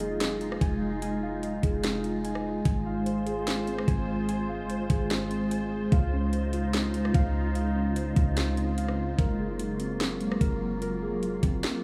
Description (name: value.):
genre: hip hop, atmospheric cloud-rap.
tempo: 147 BPM.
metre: 4/4.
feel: half-time.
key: unclear.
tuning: A4 = 440 Hz.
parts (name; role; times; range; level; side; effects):
glassy FM pad; sustained chords; 0.0-11.8 s; Db3 to C5; -33 LUFS; equal; ensemble chorus, built-in reverb, sidechain pumping.
muted felt-like synth keys; arpeggios; 0.0-11.8 s; Ab3 to Ab5; -37 LUFS; equal; chorus, low-pass filter, digital delay.
clean 808-style bass; bass; 0.0-11.6 s; F1 to Db2; -34 LUFS; equal; none.
trap drum kit; drums; 0.0-11.7 s; hi-hat, kick drum, rim click, snare drum; -31 LUFS; equal; none.
room: light reverb, digital ambience.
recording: studio reverb.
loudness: -28 LUFS.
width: mono.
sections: 0.0-11.8 A section.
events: kick muted 11.6.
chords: 0.0 Fm7; 2.7 Ab6; 5.9 Dbmaj7; 9.2 Gbmaj9#11.